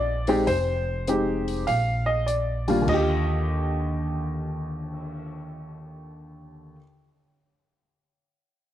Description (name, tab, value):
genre	jazz piano trio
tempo	100 BPM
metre	4/4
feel	swing 67% on 8ths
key	Eb major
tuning	A4 = 439 Hz
part	warm upright piano	melody	0.0-6.8 s	Eb2 to F5	-25 LUFS	equal	none
part	upright bass	bass	0.0-6.7 s	F1 to Eb2	-28 LUFS	equal	none
part	open jazz drum kit	drums	0.3-5.2 s	crash cymbal, cymbal swell, hi-hat, kick drum	-40 LUFS	left 4 dB	none
room	moderate echo chamber reverb, RT60 1.8 s, small room ambience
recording	1960s-style stereo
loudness	-23 LUFS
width	side -12 dB against mid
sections	0.0-2.9 A section; 2.9-5.3 B section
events	none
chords	0.5 Fm9; 1.7 Bb; 2.9 Ebmaj9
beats	| 0.48 1.08 1.68 2.28 | 2.88 3.49 4.09 4.69